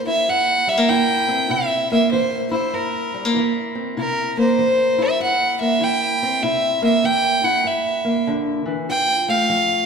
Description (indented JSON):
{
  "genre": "acoustic country blues, solo or duo",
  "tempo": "98 BPM",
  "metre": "4/4",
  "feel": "swing 64% on 8ths",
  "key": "C mixolydian",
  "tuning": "A4 = 440 Hz",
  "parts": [
    { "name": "rich fiddle", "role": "melody", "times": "0.0-9.9 s", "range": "Bb4 to G5", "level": "-18 LUFS", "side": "equal", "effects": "none" },
    { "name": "fingerpicked steel-string acoustic guitar", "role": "accompaniment", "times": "0.0-9.9 s", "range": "F2 to F4", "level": "-21 LUFS", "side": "equal", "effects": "none" }
  ],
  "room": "wet concert hall reverb, RT60 2.1 s",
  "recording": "recorded in a church or concert hall",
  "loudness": "-17 LUFS",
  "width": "side -6 dB against mid",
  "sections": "0.0-9.9 A section",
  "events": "none",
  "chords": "0.0 C7; 8.9 F"
}